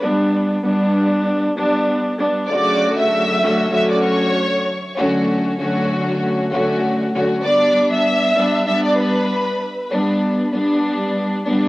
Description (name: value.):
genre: hip hop.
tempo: 97 BPM.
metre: 4/4.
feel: swing 57% on 16ths.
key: unclear.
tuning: A4 = 441 Hz.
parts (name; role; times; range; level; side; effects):
dark studio string section; accompaniment; 0.0-11.7 s; C#3 to F#4; -17 LUFS; equal; cassette tape, high-pass filter, low-pass filter.
warm studio violin section; melody; 2.5-9.9 s; B4 to E6; -18 LUFS; equal; high-pass filter, low-pass filter, cassette tape.
room: moderate small room ambience, RT60 0.5 s.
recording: home recording on cassette.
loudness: -15 LUFS.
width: side -18 dB against mid.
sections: 0.0-11.7 A section.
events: none.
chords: 0.0 G; 2.5 Dmaj7; 7.4 G.